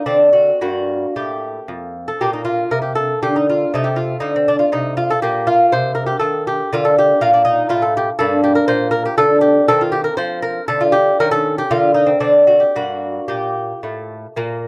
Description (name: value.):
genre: classical, baroque-style dance for lute.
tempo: 109-123 BPM.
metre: 3/4.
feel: rubato.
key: Bb major, G minor from 8.2 s.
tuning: A4 = 439 Hz.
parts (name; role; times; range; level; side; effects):
lute; solo; 0.0-14.7 s; F2 to C5; -16 LUFS; equal; none.
room: light reverb.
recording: dry, close 1970s-style studio recording.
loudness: -16 LUFS.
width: mono.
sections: 0.0-2.2 A section; 2.2-14.4 A section.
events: none.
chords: 0.1 D7; 0.6 Gm; 2.2 Bb; 3.7 Cm69; 5.2 Eb69/Bb; 6.7 Bb; 8.2 Gm; 9.7 Cm/Eb; 11.2 Eb7#11; 11.7 Cm11/D; 12.2 D7; 12.8 Gm.